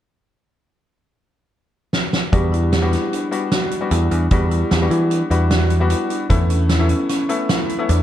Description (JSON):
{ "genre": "progressive instrumental, band music in an uneven meter", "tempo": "151 BPM", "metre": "5/4", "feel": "straight", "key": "E dorian", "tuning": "A4 = 445 Hz", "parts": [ { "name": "loose indie drum kit", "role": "drums", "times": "1.9-8.0 s", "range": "hi-hat, kick drum, snare drum", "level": "-21 LUFS", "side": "right 1 dB", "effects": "none" }, { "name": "clear grand piano", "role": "accompaniment", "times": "2.3-8.0 s", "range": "G3 to F#4", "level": "-23 LUFS", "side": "left 5 dB", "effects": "none" }, { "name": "marimba with medium mallets", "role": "arpeggios", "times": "2.3-8.0 s", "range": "C#4 to G4", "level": "-23 LUFS", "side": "right 1 dB", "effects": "digital delay" }, { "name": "picked electric bass", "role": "bass", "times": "2.3-8.0 s", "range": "E2 to E3", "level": "-17 LUFS", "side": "equal", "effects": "none" } ], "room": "light reverb", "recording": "dark, warm production", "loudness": "-16 LUFS", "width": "side -11 dB against mid", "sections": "0.3-2.3 A section; 2.3-8.0 B section", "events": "drum fill 1.9-2.3", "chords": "0.3 N.C.; 2.3 Em7; 6.3 Aadd9/E", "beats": "| 0.34 0.73 1.13 1.53 1.93 | 2.32 2.72 3.12 3.52 3.92 | 4.31 4.71 5.11 5.51 5.90 | 6.30 6.70 7.10 7.50 7.89" }